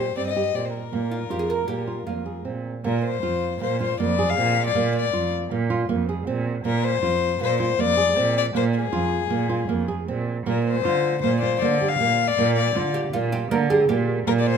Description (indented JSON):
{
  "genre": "contemporary instrumental, chamber music in an uneven meter",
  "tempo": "158 BPM",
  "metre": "5/4",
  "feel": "straight",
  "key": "Bb mixolydian",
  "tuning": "A4 = 440 Hz",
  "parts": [
    { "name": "dark violin", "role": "melody", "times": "0.0-14.6 s", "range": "Ab4 to F5", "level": "-24 LUFS", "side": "left 9 dB", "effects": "none" },
    { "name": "nylon-string guitar", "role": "arpeggios", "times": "0.0-14.6 s", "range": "Bb3 to Ab4", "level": "-26 LUFS", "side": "right 5 dB", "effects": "none" },
    { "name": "dark cello", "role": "bass", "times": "0.0-14.6 s", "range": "F2 to D3", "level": "-26 LUFS", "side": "right 3 dB", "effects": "none" },
    { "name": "oud", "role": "second line", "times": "1.1-2.8, 12.9-14.2 s", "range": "F4 to Bb4", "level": "-25 LUFS", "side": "right 2 dB", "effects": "none" }
  ],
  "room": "moderate recital hall reverb, RT60 1.6 s",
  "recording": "none",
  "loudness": "-20 LUFS",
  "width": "side -7 dB against mid",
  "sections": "0.0-2.9 A section; 2.9-14.6 B section",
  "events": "none",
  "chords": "0.0 Cmadd9; 0.9 Bbsus2; 10.5 Gm7/Bb (rootless)",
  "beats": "0.17 0.55 | 0.93 1.31 1.69 2.07 2.46 | 2.85 3.24 3.62 4.00 4.38 | 4.76 5.14 5.52 5.90 6.28 | 6.65 7.03 7.41 7.79 8.17 | 8.54 8.92 9.30 9.69 10.07 | 10.46 10.85 11.23 11.61 11.99 | 12.37 12.75 13.13 13.51 13.89 | 14.27"
}